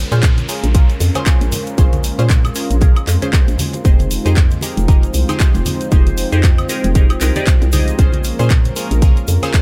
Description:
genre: deep house.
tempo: 116 BPM.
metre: 4/4.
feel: swing 57% on 16ths.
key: Bb minor.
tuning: A4 = 440 Hz.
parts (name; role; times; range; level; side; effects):
warm analog pad; sustained chords; 0.0-9.6 s; Ab3 to C5; -28 LUFS; equal; chorus, sidechain pumping.
filtered dub chord stab; stabs; 0.0-9.6 s; Db4 to Eb5; -27 LUFS; equal; phaser, subtle chorus, sidechain pumping, digital delay.
hollow knocking FM bass; bass; 0.0-9.4 s; F1 to Bb2; -19 LUFS; equal; sidechain pumping.
downlifter; sound effects; 0.0-3.8 s; none; -36 LUFS; equal; none.
deep dark ambient pad; texture; 0.9-9.6 s; F4 to C6; -32 LUFS; equal; chorus, built-in reverb, sidechain pumping.
house drum kit; drums; 0.1-9.6 s; handclaps, hi-hat, woodblock; -26 LUFS; equal; none.
congas; percussion; 0.1-9.5 s; none; -28 LUFS; equal; none.
egg shaker; percussion; 0.1-9.6 s; none; -34 LUFS; equal; none.
electronic kick drum; drums; 0.2-9.6 s; none; -14 LUFS; equal; none.
room: digital ambience.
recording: none.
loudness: -14 LUFS.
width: mono.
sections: 0.0-9.6 A section.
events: none.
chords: 0.0 Bbm7; 3.6 Fm7; 8.0 Bbm7.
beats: 0.23 0.75 1.26 | 1.78 2.30 2.81 3.33 | 3.85 4.37 4.88 5.40 | 5.92 6.43 6.95 7.47 | 7.99 8.50 9.02 9.54.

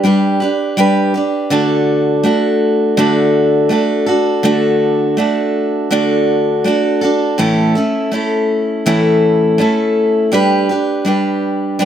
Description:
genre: pop.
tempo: 82 BPM.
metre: 4/4.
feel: swing 55% on 16ths.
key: D major.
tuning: A4 = 440 Hz.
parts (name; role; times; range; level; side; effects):
picked steel-string acoustic guitar; solo; 0.0-11.8 s; A2 to B4; -12 LUFS; equal; none.
room: light reverb.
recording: none.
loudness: -12 LUFS.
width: side -9 dB against mid.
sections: 0.0-1.5 A section; 1.5-11.8 B section.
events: none.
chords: 0.0 G; 1.5 D; 7.4 A; 10.3 G.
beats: 0.04 0.77 | 1.50 2.24 2.97 3.71 | 4.44 5.17 5.91 6.64 | 7.38 8.12 8.85 9.59 | 10.32 11.06 11.79.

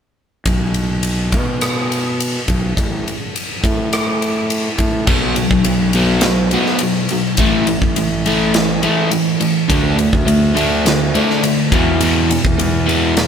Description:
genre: quiet-loud alternative rock.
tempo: 104 BPM.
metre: 4/4.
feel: straight.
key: unclear.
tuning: A4 = 439 Hz.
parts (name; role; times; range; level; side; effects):
fuzz fingered electric bass; bass; 0.5-13.3 s; A1 to B2; -19 LUFS; equal; overdrive.
huge arena drum kit; drums; 0.5-13.3 s; crash cymbal, kick drum, ride cymbal, rim click, snare drum; -18 LUFS; equal; none.
crunchy overdriven guitar; riff; 5.1-13.3 s; E2 to D4; -15 LUFS; equal; none.
room: light reverb.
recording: band playing live in one room.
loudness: -13 LUFS.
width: side -7 dB against mid.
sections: 0.5-5.1 A section; 5.1-13.3 B section.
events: none.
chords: 0.5 N.C.; 5.1 B5; 7.4 A5; 9.7 D5; 11.7 E5.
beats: | 0.46 1.03 1.61 2.19 | 2.77 3.35 3.92 4.50 | 5.08 5.65 6.23 6.81 | 7.38 7.96 8.54 9.11 | 9.69 10.27 10.85 11.43 | 12.01 12.59 13.16.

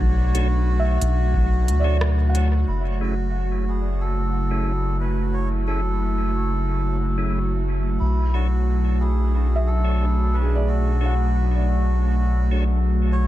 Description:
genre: ambient dub.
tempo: 90 BPM.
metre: 4/4.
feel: straight.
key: F# minor.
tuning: A4 = 435 Hz.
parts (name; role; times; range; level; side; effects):
melodica; melody; 0.0-13.3 s; E4 to C#5; -31 LUFS; left 1 dB; vintage 12-bit sampler grit, dub echo.
airy breathy pad; sustained chords; 0.0-13.3 s; B2 to F#4; -27 LUFS; right 2 dB; chorus.
felt-muted upright piano; arpeggios; 0.0-13.3 s; G#4 to F#5; -32 LUFS; right 3 dB; dub echo.
soft dub sub bass; bass; 0.0-13.3 s; F#1 to D2; -20 LUFS; equal; none.
electronic kick drum; drums; 0.0-1.5 s; none; -25 LUFS; equal; overdrive.
percussive tonewheel organ; stabs; 0.3-12.6 s; A3 to C#5; -36 LUFS; left 2 dB; chorus vibrato, fast rotary speaker, low-pass filter, dub echo.
organic electronic drum kit; drums; 0.3-2.5 s; hi-hat, rim click; -32 LUFS; equal; low-pass filter on hats, low-pass filter on snare, low-pass filter on room, dub echo.
room: little or no reverb.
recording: echo-heavy mix.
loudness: -19 LUFS.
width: side -14 dB against mid.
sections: 0.0-2.7 A section; 2.7-13.3 B section.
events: band accent 2.0-2.3; filter sweep on tonewheel organ 2.7-13.3.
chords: 0.0 Bm7; 2.7 F#m7; 8.0 Bm7.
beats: | 0.01 0.68 1.34 2.01 | 2.68 3.35 4.01 4.68 | 5.34 6.01 6.68 7.34 | 8.01 8.68 9.35 10.01 | 10.68 11.35 12.01 12.68.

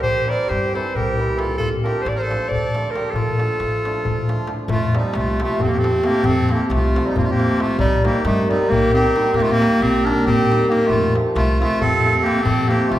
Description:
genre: balkan folk, Balkan wedding band.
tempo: 271 BPM (eighths).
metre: 7/8.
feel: straight.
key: D minor, F mixolydian from 4.7 s.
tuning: A4 = 435 Hz.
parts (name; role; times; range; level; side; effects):
bright clarinet; melody; 0.0-13.0 s; G3 to D5; -21 LUFS; equal; none.
accordion; second line; 0.0-13.0 s; Eb4 to Bb4; -25 LUFS; right 1 dB; none.
cimbalom; accompaniment; 0.0-13.0 s; Bb2 to F4; -22 LUFS; equal; none.
upright bass; bass; 0.0-13.0 s; A1 to G2; -25 LUFS; equal; none.
darbuka; percussion; 0.0-13.0 s; none; -24 LUFS; left 1 dB; none.
room: wet recital hall reverb, RT60 1.8 s.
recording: recorded in a church or concert hall.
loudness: -16 LUFS.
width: side -13 dB against mid.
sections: 0.0-4.7 A section; 4.7-13.0 B section.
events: none.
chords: 0.0 C; 1.6 Dm; 4.7 F; 7.8 Cm; 9.3 Eb; 10.9 F.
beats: | 0.03 0.25 0.47 0.69 0.92 1.14 1.36 | 1.58 1.80 2.03 2.25 2.47 2.69 2.91 | 3.14 3.36 3.58 3.80 4.02 4.25 4.47 | 4.69 4.91 5.13 5.35 5.57 5.80 6.02 | 6.24 6.46 6.68 6.90 7.12 7.35 7.57 | 7.79 8.01 8.23 8.45 8.68 8.90 9.12 | 9.34 9.56 9.78 10.01 10.23 10.45 10.67 | 10.89 11.11 11.34 11.56 11.78 12.00 12.22 | 12.45 12.67 12.89.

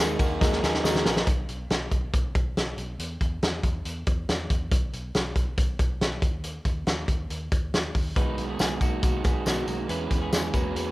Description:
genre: jangly indie pop.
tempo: 139 BPM.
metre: 4/4.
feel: straight.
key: B major.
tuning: A4 = 440 Hz.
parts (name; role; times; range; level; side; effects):
crunchy overdriven guitar; accompaniment; 0.0-1.3, 8.2-10.9 s; B2 to B4; -30 LUFS; right 5 dB; none.
reed electric piano; accompaniment; 0.0-1.3 s; D#4 to D#5; -30 LUFS; left 2 dB; none.
twelve-string electric guitar; arpeggios; 0.0-1.3, 8.2-10.9 s; A#3 to B4; -34 LUFS; left 4 dB; none.
vintage muted fingered electric bass; bass; 0.0-10.9 s; A#1 to E2; -34 LUFS; equal; none.
loose indie drum kit; drums; 0.2-10.9 s; hi-hat, kick drum, ride cymbal, snare drum; -25 LUFS; equal; none.
tambourine; percussion; 0.2-1.2, 8.6-10.9 s; none; -42 LUFS; left 3 dB; none.
room: studio ambience.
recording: rough home demo mix.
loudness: -24 LUFS.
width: side -19 dB against mid.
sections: 0.0-1.3 A section; 1.3-10.9 B section.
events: drum fill 0.4-1.3.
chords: 0.0 B6; 1.3 N.C.; 8.2 B6; 9.9 E6.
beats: 0.41 0.84 | 1.27 1.70 2.13 2.56 | 2.99 3.42 3.85 4.28 | 4.71 5.14 5.57 6.01 | 6.44 6.87 7.30 7.73 | 8.16 8.60 9.03 9.46 | 9.89 10.33 10.76.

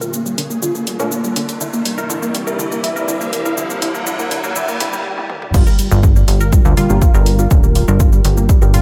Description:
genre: melodic techno.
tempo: 122 BPM.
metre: 4/4.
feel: straight.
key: G minor.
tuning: A4 = 440 Hz.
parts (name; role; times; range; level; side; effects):
fat analog lead; melody; 0.0-8.8 s; G3 to G4; -25 LUFS; equal; lush chorus, cassette tape, sidechain pumping, analog delay.
sweeping resonant pad; sustained chords; 0.0-8.8 s; G2 to G5; -31 LUFS; equal; chorus, vintage 12-bit sampler grit, sidechain pumping.
warbly dusty pluck; arpeggios; 0.0-8.7 s; D3 to Bb4; -27 LUFS; equal; chorus, sidechain pumping, analog delay.
filtered dub chord stab; stabs; 0.0-8.8 s; Bb2 to F4; -28 LUFS; equal; chorus, sidechain pumping, analog delay.
techno drum kit; drums; 0.0-8.8 s; crash cymbal, hi-hat, shaker, toms; -27 LUFS; equal; sidechain pumping on hats, sidechain pumping on perc, sidechain pumping on toms, sidechain pumping on cymbals.
riser; sound effects; 0.0-5.0 s; none; -29 LUFS; equal; none.
plucky analog bass; bass; 5.5-8.8 s; D1 to D2; -16 LUFS; equal; sidechain pumping.
electronic kick drum; drums; 5.5-8.6 s; none; -14 LUFS; equal; none.
room: moderate plate reverb, RT60 2.4 s.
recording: dreamy mix soaked in reverb, high-pass filter.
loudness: -15 LUFS.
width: mono.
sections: 0.0-5.5 A section; 5.5-8.8 B section.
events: build-up 0.0-5.5; riser 0.0-5.0; filter sweep on synth arpeggio sound 0.0-5.5; filter sweep on analog synth lead 0.0-5.5; break 5.0-5.5; drum fill 5.2-5.5; drop 5.5-8.8.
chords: 0.0 Bbmaj7; 1.6 C/G; 5.5 Gm7.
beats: 0.13 0.62 1.12 | 1.61 2.10 2.59 3.08 | 3.58 4.07 4.56 5.05 | 5.54 6.03 6.53 7.02 | 7.51 8.00 8.49.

